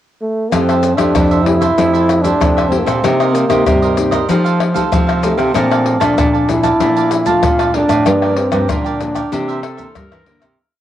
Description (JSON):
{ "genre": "samba and choro", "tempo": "95 BPM", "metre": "4/4", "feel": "straight", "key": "F major", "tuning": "A4 = 440 Hz", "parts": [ { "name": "mellow trombone", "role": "melody", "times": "0.2-9.6 s", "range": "G3 to F4", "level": "-16 LUFS", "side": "equal", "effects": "cassette tape" }, { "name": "cavaquinho", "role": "accompaniment", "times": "0.5-10.6 s", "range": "Eb4 to A5", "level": "-21 LUFS", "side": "right 7 dB", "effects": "cassette tape" }, { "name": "nylon-string guitar", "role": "accompaniment", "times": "0.5-10.6 s", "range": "F2 to G4", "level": "-21 LUFS", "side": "left 6 dB", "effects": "cassette tape" }, { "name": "nylon-string guitar", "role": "bass", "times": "0.5-10.6 s", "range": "F2 to G3", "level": "-17 LUFS", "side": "right 1 dB", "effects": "none" }, { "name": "maracas, surdo, pandeiro and tamborim", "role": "percussion", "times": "0.5-10.6 s", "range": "none", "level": "-19 LUFS", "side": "left 4 dB", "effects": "none" }, { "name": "clear clarinet", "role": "second line", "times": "9.3-10.6 s", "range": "G4 to Bb4", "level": "-32 LUFS", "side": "left 6 dB", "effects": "cassette tape" } ], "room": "moderate spring reverb, RT60 2.2 s", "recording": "home recording on cassette", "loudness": "-12 LUFS", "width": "side -12 dB against mid", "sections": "0.0-0.5 pickup bar; 0.5-10.6 A section", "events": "fade-out 8.1-10.6", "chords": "0.0 N.C.; 0.5 Fmaj9; 3.0 Cm7; 4.3 F9; 5.5 Bbmaj7; 8.1 Gm7; 9.3 C9" }